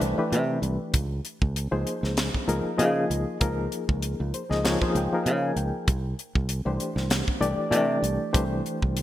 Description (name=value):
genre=electric jazz fusion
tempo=97 BPM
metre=4/4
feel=swing 55% on 16ths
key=unclear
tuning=A4 = 440 Hz
part: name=barky reed electric piano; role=accompaniment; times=0.0-9.0 s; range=E3 to Ab5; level=-27 LUFS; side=left 1 dB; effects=overdrive, fast tremolo
part: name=fingered electric bass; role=bass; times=0.0-9.0 s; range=C2 to Db3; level=-27 LUFS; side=right 1 dB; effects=none
part: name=tight funk drum kit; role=drums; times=0.0-9.0 s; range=hi-hat, kick drum, snare drum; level=-27 LUFS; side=equal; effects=gated reverb
room=moderate lush hall reverb, RT60 1.9 s, small room ambience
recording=bright 1980s-style digital production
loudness=-24 LUFS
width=side -13 dB against mid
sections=0.0-9.0 A section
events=reed electric piano fill 4.0-5.9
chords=0.0 Cmaj9; 0.9 Dbmaj9; 5.9 Cadd9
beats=0.32 | 0.94 1.55 2.17 2.79 | 3.40 4.02 4.64 5.25 | 5.87 6.49 7.11 7.72 | 8.34 8.96